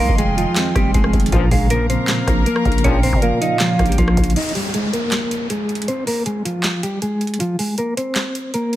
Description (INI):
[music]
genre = hip hop, trap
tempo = 158 BPM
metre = 4/4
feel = half-time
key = F minor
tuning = A4 = 443 Hz
[part]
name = mellow electric guitar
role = melody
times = 0.0-8.8 s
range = F3 to Eb5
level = -20 LUFS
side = equal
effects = tremolo, low-pass filter
[part]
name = hollow clarinet-like synth lead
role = second line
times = 0.0-4.3 s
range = F5 to G5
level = -25 LUFS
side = right 6 dB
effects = chorus, digital delay
[part]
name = mellow electric guitar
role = accompaniment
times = 0.0-4.4 s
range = F2 to F4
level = -23 LUFS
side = right 1 dB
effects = harmonic tremolo, low-pass filter
[part]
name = rich chamber string section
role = sustained chords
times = 0.0-4.3 s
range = Ab4 to C6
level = -29 LUFS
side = left 3 dB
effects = none
[part]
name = growling 808-style bass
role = bass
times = 0.0-4.4 s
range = F1 to Bb2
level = -21 LUFS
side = equal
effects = none
[part]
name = booming analog drum machine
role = drums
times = 0.0-8.8 s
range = crash cymbal, handclaps, hi-hat, kick drum, rim click, snare drum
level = -20 LUFS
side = equal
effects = none
[part]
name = mellow brass ensemble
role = stabs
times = 1.3-3.0 s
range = Db2 to F3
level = -30 LUFS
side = left 6 dB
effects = none
[part]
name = downlifter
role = sound effects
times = 4.4-7.4 s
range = none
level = -29 LUFS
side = left 1 dB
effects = none
[sound]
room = digital ambience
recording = none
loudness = -16 LUFS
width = side -14 dB against mid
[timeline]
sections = 0.0-4.4 A section; 4.4-8.8 B section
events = break 4.4-8.8; filter sweep 4.4-8.8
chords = 0.0 Fm7; 1.3 Bbm; 4.4 Fm; 7.4 Bb5